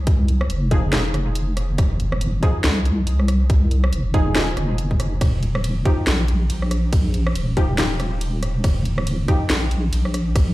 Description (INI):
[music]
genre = deep dubstep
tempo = 140 BPM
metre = 4/4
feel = swing 58% on 16ths, half-time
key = F minor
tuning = A4 = 441 Hz
[part]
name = deep soft wobble bass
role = bass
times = 0.0-10.5 s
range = Eb1 to C2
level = -20 LUFS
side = equal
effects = chorus
[part]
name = electronic kick drum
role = drums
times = 0.1-10.5 s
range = none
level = -19 LUFS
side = equal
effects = studio reverb
[part]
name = garage drum kit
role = drums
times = 0.1-10.5 s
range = hi-hat, ride cymbal, rim click, snare drum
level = -26 LUFS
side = equal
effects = overdrive, studio reverb
[part]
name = filtered dub chord stab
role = stabs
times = 0.7-9.4 s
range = F3 to Ab4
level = -28 LUFS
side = left 1 dB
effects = chorus, dub echo
[sound]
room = little or no reverb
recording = played on a big sound system in a bare room, large studio reverb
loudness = -18 LUFS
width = side -17 dB against mid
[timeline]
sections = 0.0-10.5 A section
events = none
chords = 0.0 Fm7; 5.2 Ebadd9